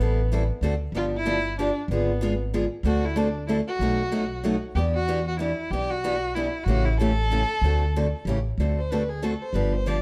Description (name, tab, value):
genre	acoustic string swing (jazz manouche)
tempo	189 BPM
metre	3/4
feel	swing 61% on 8ths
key	D mixolydian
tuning	A4 = 439 Hz
part	warm violin	melody	0.0-10.0 s	B3 to D5	-31 LUFS	equal	plate reverb
part	picked steel-string acoustic guitar	accompaniment	0.0-10.0 s	B2 to A4	-29 LUFS	equal	none
part	upright bass	bass	0.0-10.0 s	G1 to E2	-28 LUFS	equal	none
room	moderate studio reverb, RT60 0.8 s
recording	dark, warm production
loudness	-25 LUFS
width	mono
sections	0.0-8.6 A section; 8.6-10.0 B section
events	violin solo 8.6-10.0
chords	0.0 Am7; 0.6 D7; 0.9 G7; 1.9 G#dim7; 2.8 D7; 3.8 B7; 4.8 Em7; 6.7 A7; 7.6 D7; 8.3 A7; 8.6 D7